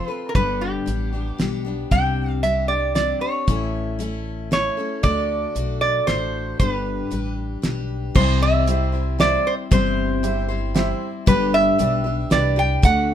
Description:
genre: honky-tonk and classic country.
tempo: 115 BPM.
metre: 3/4.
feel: straight.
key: C lydian from 8.2 s.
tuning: A4 = 440 Hz.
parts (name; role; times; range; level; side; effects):
lap resonator guitar; melody; 0.0-13.1 s; G4 to G5; -22 LUFS; right 2 dB; none.
picked steel-string acoustic guitar; accompaniment; 0.0-13.1 s; G2 to C5; -26 LUFS; left 5 dB; none.
upright bass; bass; 0.3-13.1 s; G1 to D2; -25 LUFS; equal; none.
damped 70s drum kit; drums; 0.3-13.0 s; crash cymbal, hi-hat, kick drum, snare drum; -20 LUFS; equal; none.
warm upright piano; accompaniment; 8.7-12.6 s; D4 to E5; -29 LUFS; right 5 dB; none.
room: light reverb.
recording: minimal, uncompressed stereo recording.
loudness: -18 LUFS.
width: side -10 dB against mid.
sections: 0.0-8.2 A section; 8.2-13.1 B section.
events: none.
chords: 0.4 G; 1.9 Csus2; 3.5 A; 5.0 D; 6.6 G; 8.2 C; 11.3 G.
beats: | 0.35 0.87 1.39 | 1.91 2.44 2.96 | 3.48 4.00 4.52 | 5.04 5.56 6.08 | 6.60 7.12 7.64 | 8.16 8.68 9.20 | 9.72 10.24 10.76 | 11.27 11.79 12.31 | 12.83.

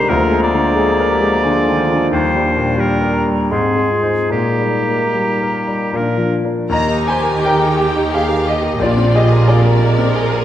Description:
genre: classical, romantic movement for piano and orchestra.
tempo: 70-91 BPM.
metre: 3/4.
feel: rubato.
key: Eb major.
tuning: A4 = 440 Hz.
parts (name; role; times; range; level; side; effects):
clear concert grand piano; melody; 0.0-10.4 s; Bb1 to Bb5; -16 LUFS; left 1 dB; none.
bright oboe; second line; 0.0-6.4 s; G4 to D5; -21 LUFS; right 1 dB; none.
mellow clarinet; second line; 0.0-6.4 s; C4 to Ab4; -24 LUFS; left 1 dB; none.
mellow hollow concert flute; second line; 0.0-6.4 s; F5 to C6; -24 LUFS; equal; none.
dark bassoon; accompaniment; 0.0-6.4 s; F3 to Bb3; -22 LUFS; right 1 dB; none.
mellow French horn section; sustained chords; 0.0-6.4 s; F3 to Eb4; -23 LUFS; left 2 dB; none.
rich studio violin section; melody; 6.7-10.4 s; Bb3 to Bb4; -26 LUFS; left 3 dB; none.
warm studio violin section; second line; 6.7-10.4 s; D5 to Bb5; -24 LUFS; left 2 dB; none.
rich studio viola section; accompaniment; 6.7-10.4 s; F4 to Bb4; -21 LUFS; right 2 dB; none.
rich studio double bass section; bass; 6.7-10.4 s; Bb1 to Eb2; -20 LUFS; right 3 dB; none.
warm studio cello section; bass; 6.7-10.4 s; Bb2 to Eb3; -22 LUFS; right 4 dB; none.
room: wet concert hall reverb, RT60 2.0 s.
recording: none.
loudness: -13 LUFS.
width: side -11 dB against mid.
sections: 0.0-6.7 A section; 6.7-10.4 B section.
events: none.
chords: 0.1 Bb7/D; 2.1 Eb; 3.5 Ab; 4.3 Eb/Bb; 6.0 Bb; 6.7 Eb; 8.8 Bb9.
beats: | 0.09 0.77 1.44 | 2.11 2.79 3.52 | 4.32 5.16 5.95 | 6.73 7.44 8.13 | 8.81 9.48 10.16.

